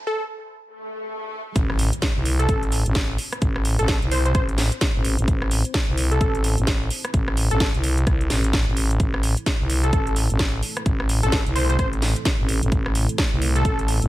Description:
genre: bass house.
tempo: 129 BPM.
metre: 4/4.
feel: swing 60% on 16ths.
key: A minor.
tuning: A4 = 436 Hz.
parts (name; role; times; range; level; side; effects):
plucky unison lead; melody; 0.1-14.0 s; A4 to C5; -28 LUFS; equal; dub echo.
swell and impact; sound effects; 0.8-3.4 s; none; -34 LUFS; left 1 dB; none.
dark analog pad; sustained chords; 3.3-14.1 s; A3 to C5; -36 LUFS; right 1 dB; chorus, phaser, sidechain pumping.
growling FM bass; bass; 1.6-14.1 s; A1 to C2; -21 LUFS; equal; overdrive, sidechain pumping, high-pass filter.
electronic kick drum; drums; 1.6-13.8 s; none; -23 LUFS; equal; high-pass filter on kick, high-pass filter on room.
house drum kit; drums; 1.6-14.1 s; hi-hat, rim click, snare drum; -26 LUFS; equal; none.
room: little or no reverb.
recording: high-pass filter.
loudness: -19 LUFS.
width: side -16 dB against mid.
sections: 0.0-1.6 A section; 1.6-14.1 B section.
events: break 0.0-1.6; build-up 0.0-1.6; swell 0.8-1.6; drop 1.6-14.1; impact 1.6-3.4.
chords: 0.0 N.C.; 1.6 Am.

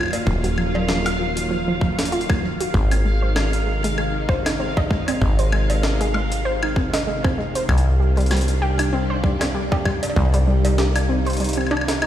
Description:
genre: IDM.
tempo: 97 BPM.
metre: 4/4.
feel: swing 56% on 16ths.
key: unclear.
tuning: A4 = 439 Hz.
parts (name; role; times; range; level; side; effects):
soft string machine; sustained chords; 0.0-12.1 s; C3 to F4; -26 LUFS; left 1 dB; ensemble chorus.
deep acid bass; bass; 0.0-12.1 s; Eb1 to C2; -22 LUFS; equal; none.
jungle sampler-style drum kit; drums; 0.0-12.1 s; cowbell, hi-hat, snare drum, woodblock; -26 LUFS; equal; overdrive, ping-pong delay.
bubbling stepped-filter texture; texture; 0.0-12.1 s; F5; -31 LUFS; right 2 dB; chorus, built-in reverb, sidechain pumping.
warbly dusty pluck; arpeggios; 0.1-12.1 s; F3 to Eb5; -26 LUFS; right 2 dB; chorus, tape echo.
electronic kick drum; drums; 0.3-10.3 s; none; -22 LUFS; equal; overdrive.
room: light reverb.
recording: played on a big sound system in a bare room, stone room reverb.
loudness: -18 LUFS.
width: side -11 dB against mid.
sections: 0.0-12.1 A section.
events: kick drops out 11.4-12.1.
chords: 0.0 Ebmadd9; 2.7 Ab; 7.7 Cmadd9.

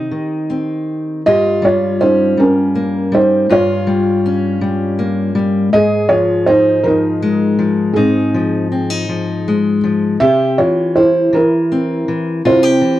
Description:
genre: acoustic folk-pop ballad.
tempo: 54 BPM (dotted quarters).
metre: 6/8.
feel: straight.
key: unclear.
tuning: A4 = 444 Hz.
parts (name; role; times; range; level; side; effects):
felt-muted upright piano; melody; 0.0-13.0 s; C4 to E5; -14 LUFS; right 1 dB; none.
fingerpicked steel-string acoustic guitar; accompaniment; 0.0-13.0 s; G2 to Ab4; -16 LUFS; left 2 dB; none.
room: moderate booth ambience, RT60 0.2 s.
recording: dry, close 1970s-style studio recording.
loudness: -12 LUFS.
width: side -14 dB against mid.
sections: 0.0-1.3 A section; 1.3-13.0 B section.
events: none.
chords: 0.0 Cm; 1.3 Gm7b5; 5.7 Fm7/Ab; 10.2 C.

